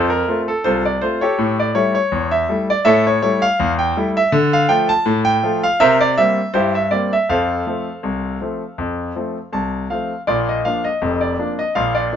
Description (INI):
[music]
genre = ragtime piano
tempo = 81 BPM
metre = 2/4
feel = swing 54% on 16ths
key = F major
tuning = A4 = 440 Hz
[part]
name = bright concert grand piano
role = solo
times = 0.0-12.2 s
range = F1 to A5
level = -15 LUFS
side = equal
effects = none
[sound]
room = light reverb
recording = nothing above 7.7 kHz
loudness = -15 LUFS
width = side -8 dB against mid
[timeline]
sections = 0.0-10.3 A section; 10.3-12.2 B section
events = none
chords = 0.0 F; 1.4 A7; 4.3 Dm; 5.8 C7; 7.3 F; 10.3 Bb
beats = 0.64 | 1.38 2.12 | 2.86 3.60 | 4.33 5.07 | 5.81 6.55 | 7.29 8.04 | 8.78 9.53 | 10.27 11.01 | 11.75